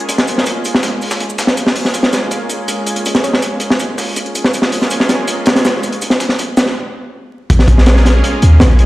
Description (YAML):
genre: drum and bass, jungle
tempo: 162 BPM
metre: 4/4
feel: straight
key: Bb minor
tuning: A4 = 440 Hz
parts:
  - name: lush unison pad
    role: sustained chords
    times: 0.0-8.9 s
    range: Ab3 to Ab4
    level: -20 LUFS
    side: equal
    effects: chorus
  - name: breakbeat sampler-style drum kit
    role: drums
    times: 0.0-6.7 s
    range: hi-hat, shaker, snare drum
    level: -24 LUFS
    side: equal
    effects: high-pass filter on perc, high-pass filter on snare, high-pass filter on hats, high-pass filter on room
  - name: crunchy breakbeat drum kit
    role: drums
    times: 0.1-8.9 s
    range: hi-hat, kick drum, snare drum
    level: -14 LUFS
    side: equal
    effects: high-pass filter on kick, high-pass filter on hats, high-pass filter on snare, high-pass filter on room
  - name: thumb-piano-like synth pluck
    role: melody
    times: 3.2-3.5 s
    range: Db5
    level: -26 LUFS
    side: left 1 dB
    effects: chorus, dub echo
  - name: warm 808-style bass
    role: bass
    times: 7.5-8.9 s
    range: Bb1 to Eb2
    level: -8 LUFS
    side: equal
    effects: none
room: light reverb, small room ambience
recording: played on a big sound system in a bare room, large studio reverb, vinyl crackle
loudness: -11 LUFS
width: side -17 dB against mid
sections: 0.0-7.5 A section; 7.5-8.9 B section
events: break 6.8-7.5; drop 7.5-8.9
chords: 0.0 Bbm7